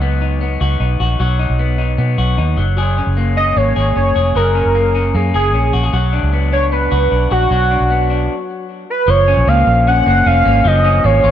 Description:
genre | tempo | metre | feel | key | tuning
jangly indie pop | 152 BPM | 4/4 | straight | F# major | A4 = 439 Hz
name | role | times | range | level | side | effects
electric guitar through a small old amp | arpeggios | 0.0-11.3 s | E#3 to G#4 | -19 LUFS | left 4 dB | spring reverb, plate reverb, digital delay
vintage muted fingered electric bass | bass | 0.0-11.3 s | E#1 to B2 | -15 LUFS | equal | none
warm velvety synth lead | melody | 3.4-11.3 s | F#4 to F#5 | -15 LUFS | right 1 dB | chorus, plate reverb
room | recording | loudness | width
light reverb | none | -12 LUFS | side -10 dB against mid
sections
0.0-9.1 A section; 9.1-11.3 B section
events
stop 8.3-9.1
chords
0.0 B; 2.6 F#add9; 5.9 Bm; 9.1 F#maj7

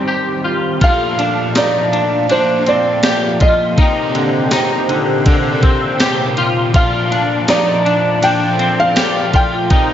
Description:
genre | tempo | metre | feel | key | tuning
dream pop | 81 BPM | 4/4 | straight | Bb major | A4 = 440 Hz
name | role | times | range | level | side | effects
felt-muted upright piano | melody | 0.0-9.9 s | C5 to G5 | -17 LUFS | right 1 dB | tape echo
crunchy overdriven guitar | accompaniment | 0.0-9.9 s | Bb2 to G4 | -21 LUFS | right 1 dB | tremolo, lush chorus
phased analog pad | sustained chords | 0.0-9.9 s | Bb2 to F5 | -20 LUFS | left 1 dB | phaser, chorus
semi-hollow electric guitar | arpeggios | 0.0-9.9 s | D3 to G4 | -18 LUFS | left 2 dB | ensemble chorus, tape echo
gated 80s digital drum machine | drums | 0.8-9.9 s | kick drum, ride cymbal, snare drum, tambourine | -15 LUFS | equal | gated reverb, gated reverb snare
room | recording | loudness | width
moderate plate reverb, RT60 3.0 s | nothing above 7.6 kHz | -12 LUFS | side -10 dB against mid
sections
0.8-9.9 A section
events
break 0.0-0.8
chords
0.0 Abmaj7 (rootless); 0.8 Bbmaj7; 3.8 Cm7; 6.7 Bbmaj7

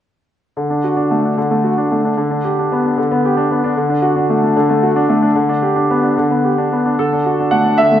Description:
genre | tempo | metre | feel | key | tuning
classical-period piano sonatina | 75 BPM (dotted quarters) | 6/8 | straight | D major | A4 = 440 Hz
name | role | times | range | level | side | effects
bright baby grand piano | solo | 0.6-8.0 s | D3 to F#5 | -13 LUFS | equal | none
room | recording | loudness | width
wet recital hall reverb, RT60 1.4 s | none | -13 LUFS | side -10 dB against mid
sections
0.6-7.0 A section; 7.0-8.0 B section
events
none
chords
0.6 D; 2.2 G/D; 3.8 D; 5.3 G/D; 7.0 D

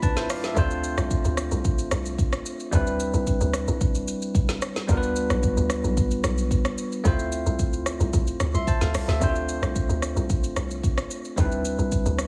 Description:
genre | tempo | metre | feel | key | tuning
amapiano | 111 BPM | 4/4 | straight | D dorian | A4 = 440 Hz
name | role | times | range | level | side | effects
barky tine electric piano | accompaniment | 0.0-12.3 s | G3 to C6 | -30 LUFS | equal | none
afro-pop drum kit | drums | 0.0-12.3 s | hi-hat, kick drum, rim click, shaker, snare drum | -28 LUFS | equal | none
hollow log drum bass | bass | 0.6-12.3 s | B1 to D2 | -28 LUFS | equal | none
room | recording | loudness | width
digital ambience | heavily compressed radio sound, small room ambience | -25 LUFS | mono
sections
0.0-9.2 A section; 9.2-12.3 A section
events
drop 0.0-9.2, 9.2-12.3; tine electric piano fill 0.0-0.6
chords
0.0 Fmaj7; 0.6 Dm7; 2.7 Cmaj9; 4.9 G7; 7.1 Fmaj7; 11.4 Cmaj9

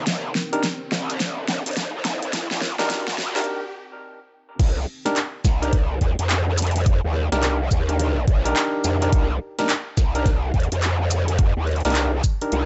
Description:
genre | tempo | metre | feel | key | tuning
glitch hop | 106 BPM | 4/4 | swing 63% on 16ths | C minor | A4 = 440 Hz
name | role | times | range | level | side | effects
growl bass | bass | 0.0-12.7 s | Bb1 to F2 | -25 LUFS | equal | chorus, high-pass filter
riser | sound effects | 0.0-3.5 s | none | -37 LUFS | equal | none
deep dark ambient pad | texture | 0.0-3.5 s | C4 to G5 | -43 LUFS | equal | none
dubstep drum kit | drums | 0.1-12.7 s | crash cymbal, handclaps, hi-hat, shaker, snare drum | -28 LUFS | equal | overdrive, studio reverb
electronic kick drum | drums | 0.1-12.4 s | none | -22 LUFS | equal | overdrive, high-pass filter on kick, studio reverb
overdriven tine electric piano | stabs | 0.5-12.7 s | D4 to Bb4 | -28 LUFS | equal | sidechain pumping, low-pass filter, tape echo
room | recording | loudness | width
little or no reverb | high-pass filter, nothing above 7.9 kHz | -22 LUFS | mono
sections
0.0-4.6 A section; 4.6-12.7 B section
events
build-up 0.0-4.6; drum fill 0.0-3.5; riser 0.0-3.5; filter sweep 0.0-4.6; break 3.5-4.6; drop 4.6-12.7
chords
0.0 Cm7

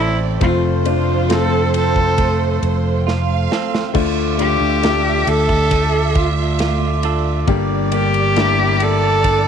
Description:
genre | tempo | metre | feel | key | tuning
pop ballad | 68 BPM | 4/4 | straight | D minor | A4 = 440 Hz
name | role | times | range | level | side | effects
warm cello | melody | 0.0-9.5 s | E4 to A4 | -19 LUFS | equal | none
warm studio violin section | second line | 0.0-9.5 s | C5 to G5 | -26 LUFS | right 14 dB | none
clear grand piano | accompaniment | 0.0-9.5 s | G2 to Bb4 | -22 LUFS | left 14 dB | none
glass harmonica | sustained chords | 0.0-9.5 s | Bb3 to D6 | -28 LUFS | right 1 dB | none
direct-recorded clean electric guitar | arpeggios | 0.0-9.5 s | A2 to A4 | -26 LUFS | right 14 dB | none
fingered electric bass | bass | 0.0-9.5 s | F1 to D2 | -19 LUFS | equal | none
modern studio drum kit | drums | 0.4-9.4 s | crash cymbal, kick drum, ride cymbal, snare drum | -24 LUFS | right 1 dB | none
room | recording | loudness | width
light reverb, studio reverb | 1960s-style stereo with parts hard left and right | -14 LUFS | side -7 dB against mid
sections
0.0-9.5 A section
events
drum fill 3.1-3.9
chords
0.4 F; 3.9 Dm; 7.5 Gm

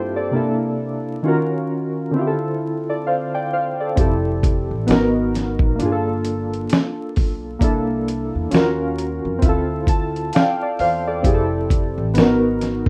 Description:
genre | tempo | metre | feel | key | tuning
lo-fi hip hop | 66 BPM | 4/4 | swing 61% on 16ths | unclear | A4 = 440 Hz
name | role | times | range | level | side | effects
warbly lo-fi synth keys | accompaniment | 0.0-12.9 s | G2 to A5 | -22 LUFS | equal | chorus, tremolo, cassette tape, low-pass filter
upright bass | bass | 4.0-12.9 s | F1 to F2 | -27 LUFS | equal | none
dusty soul sampler-style drum kit | drums | 4.0-12.9 s | hi-hat, kick drum, snare drum | -21 LUFS | equal | none
room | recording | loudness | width
wet studio reverb, RT60 0.6 s | rough home demo mix, vinyl crackle | -20 LUFS | mono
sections
0.0-12.9 A section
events
synth keys fill 9.4-11.2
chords
0.3 C13; 1.2 Ebm7; 2.1 Dm7; 4.0 Fmaj9; 4.9 Abm9; 5.8 Gm9; 7.6 C13; 8.5 Ebm7; 9.4 Dm7; 11.2 Fmaj9; 12.1 Abm9

